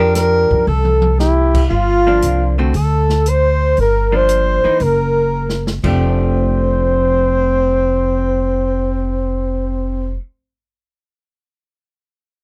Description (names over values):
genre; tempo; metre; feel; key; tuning
jazz, small-group swing and bop; 116 BPM; 4/4; swing 68% on 8ths; F major; A4 = 439 Hz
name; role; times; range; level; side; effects
breathy flugelhorn; melody; 0.0-10.2 s; E4 to C5; -20 LUFS; equal; none
breathy alto saxophone; second line; 0.0-10.1 s; C4 to C5; -23 LUFS; equal; none
vintage hollow-body jazz guitar; accompaniment; 0.0-10.2 s; D3 to G4; -24 LUFS; equal; none
upright bass; bass; 0.0-10.1 s; F1 to Gb2; -20 LUFS; equal; none
open jazz drum kit; drums; 0.2-6.0 s; crash cymbal, hi-hat, kick drum, snare drum, toms; -26 LUFS; equal; none
room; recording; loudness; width
little or no reverb; dry, close 1970s-style studio recording; -15 LUFS; mono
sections
0.0-1.7 A section; 1.7-5.8 B section; 5.8-10.0 C section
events
drum fill 0.7-1.2, 5.3-5.8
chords
0.0 F69; 1.7 Gm7; 2.7 D5; 3.8 Gm7; 4.8 Gb; 5.8 F69